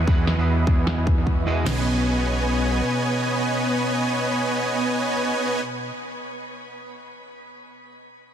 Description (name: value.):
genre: future bass.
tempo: 151 BPM.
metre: 4/4.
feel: swing 55% on 16ths, half-time.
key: B major.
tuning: A4 = 440 Hz.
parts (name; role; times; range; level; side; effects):
electric guitar at the edge of break-up; accompaniment; 0.0-6.0 s; B2 to F#5; -28 LUFS; right 3 dB; analog chorus, sidechain pumping, digital delay.
dense compressed supersaw; riff; 0.0-5.6 s; B3 to C#6; -24 LUFS; equal; sidechain pumping, low-pass filter, digital delay.
fat analog bass; bass; 0.0-2.8 s; B1 to E2; -23 LUFS; left 1 dB; sidechain pumping.
pop drum kit; drums; 0.1-1.8 s; crash cymbal, kick drum, snare drum; -22 LUFS; equal; none.
electronic snare drum; drums; 0.3-1.0 s; none; -34 LUFS; equal; soft clipping on snare, low-pass filter on snare, low-pass filter on room.
room: light reverb.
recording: dense, heavily limited modern master.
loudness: -20 LUFS.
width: side -9 dB against mid.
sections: 0.0-1.7 A section; 1.7-4.8 B section.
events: filter sweep on supersaw synth 0.0-1.7.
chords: 0.0 Emaj9; 1.7 B69.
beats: | 0.08 0.47 0.87 1.27 | 1.67 2.06 2.46 2.86 | 3.25 3.65 4.05 4.45.